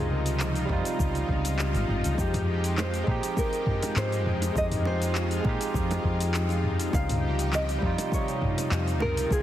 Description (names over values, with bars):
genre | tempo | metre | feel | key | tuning
sunset chillout | 101 BPM | 4/4 | swing 54% on 16ths | F minor | A4 = 440 Hz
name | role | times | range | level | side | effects
nylon-string guitar | melody | 0.0-9.4 s | G4 to F5 | -33 LUFS | equal | digital delay, shimmer reverb
overdriven tine electric piano | accompaniment | 0.0-9.4 s | C3 to G4 | -32 LUFS | moving between left 5 dB and right 4 dB | auto-pan, tape echo, shimmer reverb
lush unison pad | sustained chords | 0.0-9.4 s | C3 to Ab5 | -33 LUFS | equal | chorus, shimmer reverb
woody fretless electric bass | bass | 0.0-9.4 s | Ab1 to Bb2 | -28 LUFS | equal | none
deep house drum kit | drums | 0.3-9.4 s | handclaps, hi-hat, shaker, toms | -33 LUFS | equal | overdrive
electronic kick drum | drums | 0.7-9.4 s | none | -30 LUFS | equal | overdrive
bongos | percussion | 2.3-9.1 s | none | -36 LUFS | right 2 dB | none
room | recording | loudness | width
moderate lush hall reverb, RT60 1.9 s, digital ambience | heavily compressed radio sound, multiband compression | -24 LUFS | side -12 dB against mid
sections
0.0-9.4 A section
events
none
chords
0.0 Dbmaj9#11; 2.2 Fm9; 6.9 Dbmaj9#11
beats
0.40 0.99 1.58 | 2.18 2.77 3.37 3.96 | 4.55 5.15 5.74 6.34 | 6.93 7.53 8.12 8.71 | 9.31